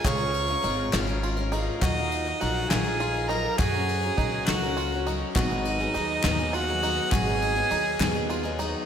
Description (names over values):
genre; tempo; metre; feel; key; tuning
indie folk with a building arrangement; 68 BPM (dotted quarters); 6/8; straight; unclear; A4 = 439 Hz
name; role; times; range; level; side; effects
warm harmonica; melody; 0.0-8.6 s; D#5 to C#6; -29 LUFS; equal; none
dark fiddle; second line; 0.0-8.6 s; D#4 to C#5; -32 LUFS; right 6 dB; slapback echo
picked twelve-string acoustic guitar; accompaniment; 0.0-8.9 s; G#2 to A#4; -32 LUFS; left 4 dB; slapback echo
mellow brass ensemble; sustained chords; 0.0-8.9 s; B2 to E#5; -40 LUFS; equal; none
bluegrass banjo; arpeggios; 0.0-8.9 s; D#4 to G#4; -34 LUFS; right 5 dB; slapback echo, digital delay
soft brush drum kit; drums; 0.0-8.7 s; kick drum, ride cymbal, snare drum; -30 LUFS; left 1 dB; none
upright bass; bass; 0.1-8.7 s; G#1 to F#2; -31 LUFS; equal; none
group handclap; percussion; 0.1-8.2 s; none; -37 LUFS; left 8 dB; none
room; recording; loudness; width
moderate lush hall reverb, RT60 1.7 s, small room ambience; big arena sound; -23 LUFS; side -8 dB against mid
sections
0.0-5.4 A section; 5.4-8.9 A section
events
none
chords
0.0 C#6; 1.8 D#madd9; 3.6 F#; 5.4 G#m7